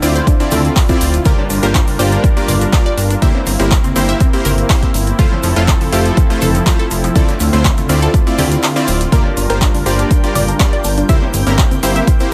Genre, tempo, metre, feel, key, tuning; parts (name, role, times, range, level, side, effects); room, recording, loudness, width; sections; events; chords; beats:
progressive house; 122 BPM; 4/4; straight; G dorian; A4 = 441 Hz
warm analog pad; sustained chords; 0.0-12.3 s; D3 to Bb4; -23 LUFS; equal; chorus, sidechain pumping
unison pluck; arpeggios; 0.0-12.3 s; F3 to E5; -24 LUFS; equal; sidechain pumping, dub echo
supersaw stab; stabs; 0.0-12.3 s; A3 to D5; -22 LUFS; equal; sidechain pumping, dub echo
fat analog bass; bass; 0.0-12.0 s; D1 to D2; -18 LUFS; equal; sidechain pumping
big-room dance drum kit; drums; 0.0-12.3 s; handclaps, hi-hat; -24 LUFS; equal
egg shaker; percussion; 0.0-12.3 s; -32 LUFS; equal
electronic kick drum; drums; 0.3-12.2 s; -15 LUFS; equal; overdrive
woodblock, congas and cowbell; percussion; 0.5-11.8 s; -27 LUFS; equal
backwards swelling texture; texture; 10.1-12.3 s; G5 to G6; -32 LUFS; equal; built-in reverb, sidechain pumping
digital ambience; -13 LUFS; mono
0.0-12.3 A section
kick drops out 8.6-9.1
0.0 Dm9; 1.3 Gm7; 3.2 C7/G; 5.2 Fmaj7; 7.2 Dm9; 9.1 Gm7; 11.1 C7/G
0.27 0.76 | 1.25 1.75 2.24 2.73 | 3.22 3.71 4.21 4.70 | 5.19 5.68 6.17 6.66 | 7.16 7.65 8.14 8.63 | 9.12 9.62 10.11 10.60 | 11.09 11.58 12.07